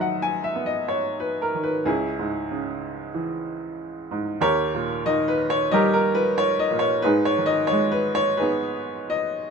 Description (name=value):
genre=classical, lyrical solo piano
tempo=81-97 BPM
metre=4/4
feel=rubato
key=G# minor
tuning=A4 = 439 Hz
part: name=bright upright piano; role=solo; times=0.0-9.5 s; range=C#2 to G#5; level=-21 LUFS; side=equal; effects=none
room=light reverb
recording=minimal, uncompressed stereo recording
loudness=-21 LUFS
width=side -5 dB against mid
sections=0.0-9.5 A section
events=none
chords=0.0 G#m7; 1.9 C#m; 4.4 D#7; 7.0 G#m